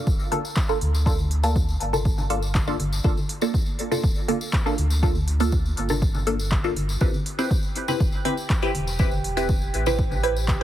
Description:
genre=dub techno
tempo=121 BPM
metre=4/4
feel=straight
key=G dorian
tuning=A4 = 441 Hz
part: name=filtered dub chord stab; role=stabs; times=0.0-10.6 s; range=Bb3 to B4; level=-26 LUFS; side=equal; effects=phaser, cassette tape, sidechain pumping, dub echo
part: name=warm sub bass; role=bass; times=0.1-10.6 s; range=D1 to D2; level=-25 LUFS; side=equal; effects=sidechain pumping
part: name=electronic kick drum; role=drums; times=0.1-10.6 s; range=none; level=-23 LUFS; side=equal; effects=none
part: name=tambourine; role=percussion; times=0.1-10.6 s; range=none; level=-36 LUFS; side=left 3 dB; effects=none
part: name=deep house drum kit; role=drums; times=0.3-10.6 s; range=handclaps, hi-hat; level=-32 LUFS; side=equal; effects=dub echo
part: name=congas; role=percussion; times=0.3-10.6 s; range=none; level=-34 LUFS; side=equal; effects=sidechain pumping on perc, dub echo
part: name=drifting glass-harmonics texture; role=texture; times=7.7-10.6 s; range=G4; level=-36 LUFS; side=right 6 dB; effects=chorus, built-in reverb, sidechain pumping
room=light reverb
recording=heavily compressed radio sound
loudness=-21 LUFS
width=side -12 dB against mid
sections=0.0-10.6 A section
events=none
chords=0.0 Gm9; 7.0 Am9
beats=0.07 0.56 | 1.06 1.56 2.05 2.55 | 3.04 3.54 4.04 4.53 | 5.03 5.52 6.02 6.52 | 7.01 7.51 8.00 8.50 | 8.99 9.49 9.99 10.48

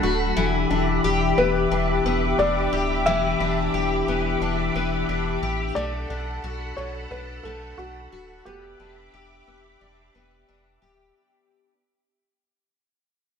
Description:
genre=dream pop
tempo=89 BPM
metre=4/4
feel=straight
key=E minor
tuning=A4 = 441 Hz
part: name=mellow electric guitar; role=accompaniment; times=0.0-0.9 s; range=F#3 to F#4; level=-31 LUFS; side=right 4 dB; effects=harmonic tremolo, ensemble chorus
part: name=soft string machine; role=sustained chords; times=0.0-11.1 s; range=G4 to D6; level=-27 LUFS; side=equal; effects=ensemble chorus
part: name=picked twelve-string acoustic guitar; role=arpeggios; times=0.0-11.7 s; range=E3 to G4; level=-25 LUFS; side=left 6 dB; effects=lush chorus, ping-pong delay
part: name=sub bass with octave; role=bass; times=0.0-11.1 s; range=D1 to B1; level=-29 LUFS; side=equal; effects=none
part: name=felt-muted upright piano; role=melody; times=1.4-10.4 s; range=F#4 to E5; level=-27 LUFS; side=left 2 dB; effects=ping-pong delay
room=moderate recital hall reverb, RT60 1.7 s, small room reverb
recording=none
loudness=-21 LUFS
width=side -7 dB against mid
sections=0.0-11.2 A section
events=fade-out 0.0-11.2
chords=0.4 Em7; 5.8 Bm7; 8.5 Em7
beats=| 0.36 1.04 1.71 2.39 | 3.06 3.73 4.41 5.08 | 5.76 6.43 7.11 7.78 | 8.45 9.13 9.80 10.48

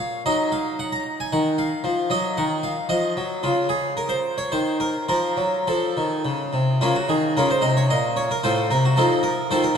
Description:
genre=classical, baroque-style suite movement for harpsichord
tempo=113 BPM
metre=3/4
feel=rubato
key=Bb minor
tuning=A4 = 440 Hz
part: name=harpsichord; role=solo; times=0.0-9.8 s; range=A2 to Bb5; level=-20 LUFS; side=equal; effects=none
room=wet church reverb, RT60 3.2 s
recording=dark, warm production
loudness=-20 LUFS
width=side -7 dB against mid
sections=0.0-6.8 A section; 6.8-9.8 A section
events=none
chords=0.2 Ebm/Gb; 1.8 Ebmadd9; 3.4 N.C.; 5.1 F; 6.8 Bbm/Db; 8.4 F7/A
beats=| 0.25 0.78 1.31 | 1.83 2.36 2.89 | 3.42 3.96 4.51 | 5.08 5.66 6.24 | 6.80 7.35 7.88 | 8.42 8.95 9.48

